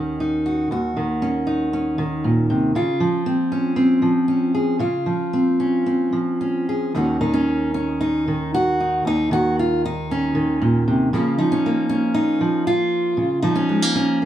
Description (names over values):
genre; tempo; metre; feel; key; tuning
folk, solo fingerstyle acoustic guitar; 116 BPM; 4/4; rubato; Eb dorian; A4 = 439 Hz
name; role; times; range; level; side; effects
fingerpicked steel-string acoustic guitar; solo; 0.0-14.3 s; Eb2 to Ab4; -18 LUFS; equal; none
room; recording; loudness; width
light reverb; small room ambience; -18 LUFS; side -11 dB against mid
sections
0.0-6.9 A section; 6.9-14.3 B section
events
none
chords
0.0 Ebm7; 2.8 Dbmaj7; 6.9 Ebm7; 11.1 Bbm/Db